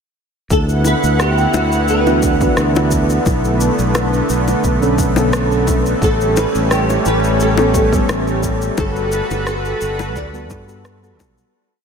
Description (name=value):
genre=sunset chillout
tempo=87 BPM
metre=4/4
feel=straight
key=D major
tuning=A4 = 436 Hz
part: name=flamenco guitar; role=melody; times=0.5-11.2 s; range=F#4 to D5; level=-21 LUFS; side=equal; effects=ensemble chorus, ping-pong delay
part: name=lush unison pad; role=sustained chords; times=0.5-11.5 s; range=D3 to F#5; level=-19 LUFS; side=equal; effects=chorus
part: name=modern bright fingered electric bass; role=bass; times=0.5-11.4 s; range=G1 to G2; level=-19 LUFS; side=equal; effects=none
part: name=electronic kick drum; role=drums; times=0.5-11.3 s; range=none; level=-20 LUFS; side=equal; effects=none
part: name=electronic shaker and rim click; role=drums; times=0.5-11.5 s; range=none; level=-25 LUFS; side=left 1 dB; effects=none
part: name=bongos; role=percussion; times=0.8-11.3 s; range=none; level=-27 LUFS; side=left 5 dB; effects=none
part: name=soft electric-piano-like synth keys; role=accompaniment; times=2.1-11.5 s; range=D3 to A4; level=-22 LUFS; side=right 1 dB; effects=chorus, auto-pan, low-pass filter, tape echo
room=moderate huge ambient reverb, RT60 8.0 s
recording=dreamy mix soaked in reverb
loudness=-13 LUFS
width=side -6 dB against mid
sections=0.5-11.5 groove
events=filter sweep on synth keys 0.5-11.5; fade-out 7.9-11.5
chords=0.5 D69; 3.3 Bm9; 6.0 A9; 8.8 Gmaj9